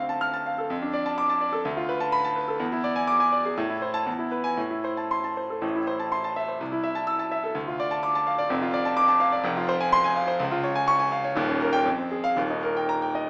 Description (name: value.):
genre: classical, virtuoso piano study.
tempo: 112-129 BPM.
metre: 2/4.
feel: rubato.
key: A minor.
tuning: A4 = 440 Hz.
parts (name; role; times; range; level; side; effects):
clear concert grand piano; solo; 0.0-13.3 s; Eb1 to F6; -26 LUFS; equal; none.
room: moderate recital hall reverb, RT60 1.5 s.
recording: small speaker sound.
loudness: -26 LUFS.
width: mono.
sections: 0.0-5.6 A section; 5.6-13.3 B section.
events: none.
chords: 0.0 Dm7; 0.7 Dm/F; 1.7 Bm7b5/D; 2.6 E7; 3.6 Am; 4.1 E; 4.6 Am; 6.6 Am/C; 7.6 Dm; 8.5 Dm/F; 9.4 Fm; 10.4 Db; 11.4 Eb7; 11.9 Fm; 12.4 Eb.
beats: 0.21 | 0.70 1.18 | 1.65 2.13 | 2.60 3.08 | 3.57 4.06 | 4.58 5.11 | 5.63 6.12 | 6.60 7.08 | 7.55 8.03 | 8.50 8.97 | 9.44 9.92 | 10.40 10.88 | 11.37 11.86 | 12.37 12.89.